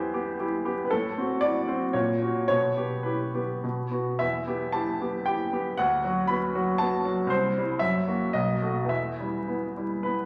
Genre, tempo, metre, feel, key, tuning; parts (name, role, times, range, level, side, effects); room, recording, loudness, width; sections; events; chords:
classical, romantic character piece for solo piano; 91-121 BPM; 3/4; rubato; E minor; A4 = 440 Hz
clear baby grand piano; solo; 0.0-10.3 s; B1 to B5; -27 LUFS; equal
wet recital hall reverb, RT60 1.5 s; vinyl crackle; -27 LUFS; mono
0.0-10.3 A section
0.0 Em; 0.9 F#m7b5/A; 1.9 F#/A#; 2.5 Em/B; 3.6 B5; 4.2 Em; 5.8 Bm/D; 7.3 C; 7.8 F#7; 8.3 B7; 8.9 Em